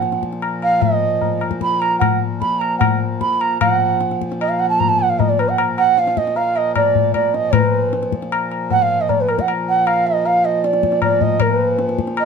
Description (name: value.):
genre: indian classical, Hindustani.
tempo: 153 BPM.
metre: 5/4.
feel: straight.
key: Bb raga bhairav.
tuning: A4 = 439 Hz.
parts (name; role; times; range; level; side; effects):
bass bansuri; melody; 0.0-12.2 s; Bb4 to Cb6; -17 LUFS; right 4 dB; none.
hand-pumped harmonium; drone; 0.0-12.2 s; Bb2 to F3; -25 LUFS; left 1 dB; none.
tabla; percussion; 0.0-12.2 s; none; -20 LUFS; left 9 dB; none.
room: moderate studio reverb, RT60 0.6 s.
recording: dark, warm production.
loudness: -15 LUFS.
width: side -6 dB against mid.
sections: 0.0-3.6 A section; 3.6-12.2 B section.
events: speeding up 0.0-12.2.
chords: none.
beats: 0.02 0.42 0.82 1.22 | 1.62 2.02 2.42 2.82 3.21 | 3.61 4.01 4.40 4.79 5.19 | 5.58 5.97 6.37 6.76 7.15 | 7.54 7.93 8.32 8.71 9.09 | 9.48 9.87 10.25 10.64 11.02 | 11.40 11.79 12.17.